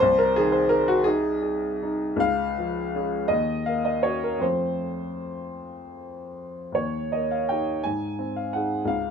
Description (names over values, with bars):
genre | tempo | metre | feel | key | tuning
classical, romantic character piece for solo piano | 49-58 BPM (dotted quarters) | 6/8 | rubato | unclear | A4 = 440 Hz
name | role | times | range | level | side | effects
warm upright piano | solo | 0.0-9.1 s | C2 to Ab5 | -23 LUFS | equal | none
room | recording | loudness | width
light reverb | minimal, uncompressed stereo recording | -22 LUFS | side -7 dB against mid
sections
0.0-9.1 A section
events
none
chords
0.0 Ab/C; 2.2 Db; 3.3 Ebm7; 4.4 F; 6.8 Eb; 7.8 Ab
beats
| 0.01 1.05 | 2.20 3.29 | 4.42 5.57 | 6.76 7.84 | 8.91